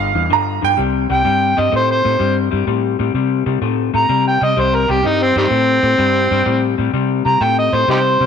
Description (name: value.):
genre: electric blues shuffle.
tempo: 127 BPM.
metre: 4/4.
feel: swing 68% on 8ths.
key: unclear.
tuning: A4 = 442 Hz.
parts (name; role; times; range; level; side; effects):
bright upright piano; second line; 0.0-0.8 s; F5 to Bb5; -17 LUFS; right 11 dB; none.
electric guitar through a small old amp; riff; 0.0-8.3 s; G2 to A3; -19 LUFS; left 14 dB; none.
vintage muted fingered electric bass; bass; 0.0-8.3 s; G1 to C3; -21 LUFS; right 1 dB; none.
overdriven harmonica; melody; 1.1-8.3 s; Eb3 to Bb5; -15 LUFS; right 2 dB; slapback echo.
room: light reverb.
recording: 1960s-style stereo with parts hard left and right.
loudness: -13 LUFS.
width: side -7 dB against mid.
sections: 0.8-8.3 A section.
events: none.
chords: 0.0 G5; 0.8 C5.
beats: 0.30 | 0.78 1.25 1.72 2.20 | 2.67 3.14 3.62 4.09 | 4.57 5.04 5.51 5.99 | 6.46 6.93 7.40 7.88.